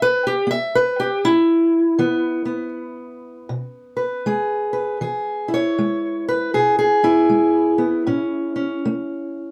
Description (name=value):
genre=acoustic country blues, solo or duo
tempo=79 BPM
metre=4/4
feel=swing 62% on 8ths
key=E major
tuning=A4 = 443 Hz
part: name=fingerpicked steel-string acoustic guitar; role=solo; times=0.0-9.5 s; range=A2 to E5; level=-20 LUFS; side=equal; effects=none
room=light reverb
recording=close, detailed microphones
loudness=-19 LUFS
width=mono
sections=0.0-5.0 A section; 5.0-9.5 B section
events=steel-string acoustic guitar solo 0.0-5.0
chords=0.0 E; 8.1 A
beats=0.47 1.23 | 1.98 2.74 3.50 4.26 | 5.02 5.79 6.55 7.31 | 8.08 8.84